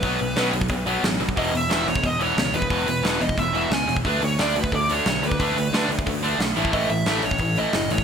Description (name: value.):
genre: punk rock.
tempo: 179 BPM.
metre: 4/4.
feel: straight.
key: unclear.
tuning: A4 = 441 Hz.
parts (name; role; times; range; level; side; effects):
dark smooth lead guitar; melody; 0.0-8.0 s; B4 to G#5; -26 LUFS; right 2 dB; overdrive, tape echo.
distorted electric guitar; riff; 0.0-8.0 s; E2 to D4; -24 LUFS; equal; overdrive.
overdriven picked electric bass; bass; 0.0-8.0 s; E1 to D2; -29 LUFS; equal; none.
big rock drum kit; drums; 0.0-8.0 s; hi-hat, kick drum, snare drum; -25 LUFS; equal; none.
room: light reverb.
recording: none.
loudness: -20 LUFS.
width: side -7 dB against mid.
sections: 0.0-8.0 A section.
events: none.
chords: 0.0 B5; 1.4 E5; 4.1 D5; 6.6 A.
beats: | 0.03 0.36 0.70 1.04 | 1.37 1.71 2.04 2.38 | 2.71 3.05 3.38 3.72 | 4.05 4.39 4.72 5.06 | 5.39 5.73 6.06 6.40 | 6.73 7.07 7.40 7.74.